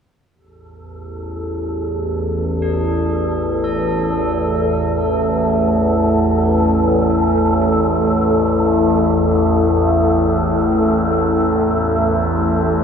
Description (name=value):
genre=dark ambient drone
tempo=free time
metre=none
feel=none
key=unclear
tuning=A4 = 442 Hz
part: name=deep dark ambient pad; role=sustained chords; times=2.3-12.8 s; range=A3 to E5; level=-19 LUFS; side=left 2 dB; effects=chorus, built-in reverb
part: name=overtone-sweeping drone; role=drone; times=1.0-12.8 s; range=A1 to E2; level=-18 LUFS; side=equal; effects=chorus, built-in reverb
part: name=wind-like tuned noise texture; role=texture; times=1.1-12.8 s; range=A4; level=-22 LUFS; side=equal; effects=built-in reverb
part: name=tubular bells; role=arpeggios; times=2.6-12.8 s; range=D4 to A4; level=-31 LUFS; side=right 2 dB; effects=diffuse ambient delay
room=wet huge ambient reverb, RT60 8.2 s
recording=worn, warbling old tape, cassette tape, warbly pitch drift, studio ambience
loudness=-14 LUFS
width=side -7 dB against mid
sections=0.3-12.8 A section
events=fade-in on tubular bells 0.3-12.8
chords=0.3 A5